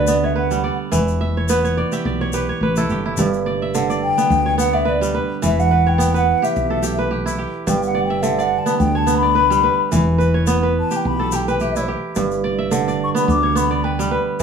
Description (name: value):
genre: west african traditional, West African string and xylophone music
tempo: 107 BPM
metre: 4/4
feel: swing 55% on 16ths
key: G lydian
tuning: A4 = 441 Hz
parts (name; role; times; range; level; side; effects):
- mellow hollow concert flute; melody; 0.0-14.1 s; D5 to D6; -19 LUFS; left 2 dB; plate reverb
- kora; arpeggios; 0.0-14.4 s; G2 to E5; -19 LUFS; right 4 dB; none
- woody fretless electric bass; bass; 0.0-14.4 s; E1 to D2; -21 LUFS; left 1 dB; none
- tube shaker; percussion; 0.1-14.4 s; none; -32 LUFS; left 7 dB; none
room: moderate studio reverb, RT60 0.7 s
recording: small room ambience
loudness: -16 LUFS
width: side -6 dB against mid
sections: 0.0-3.2 A section; 3.2-14.4 B section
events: kora fill 1.2-3.2; flute solo 3.2-14.4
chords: 0.0 G; 0.9 Em; 3.2 G; 5.4 Em; 7.7 G; 9.9 Em; 12.2 G